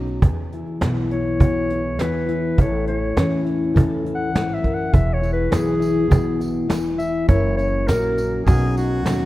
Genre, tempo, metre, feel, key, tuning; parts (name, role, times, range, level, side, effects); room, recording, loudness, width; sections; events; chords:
acoustic folk duo or small band; 102 BPM; 4/4; straight; E major; A4 = 440 Hz
fingerpicked steel-string acoustic guitar; accompaniment; 0.0-9.3 s; E2 to A4; -22 LUFS; left 2 dB
upright bass; bass; 0.0-9.3 s; E1 to E2; -25 LUFS; equal
cajon; percussion; 0.1-9.2 s; -19 LUFS; right 1 dB
soft brush drum kit; drums; 0.2-9.2 s; hi-hat, kick drum, snare drum; -23 LUFS; equal
clear clarinet; melody; 1.1-8.4 s; G#4 to F#5; -26 LUFS; equal
tambourine; percussion; 4.9-9.2 s; -45 LUFS; right 2 dB
warm harmonica; second line; 8.5-9.3 s; F#4 to G#4; -29 LUFS; equal
moderate lush hall reverb, RT60 2.0 s; rough home demo mix; -17 LUFS; side -16 dB against mid
0.2-9.3 A section
clarinet solo 0.2-9.3
0.2 E; 2.6 A; 4.9 E; 7.3 F#7; 8.5 Badd9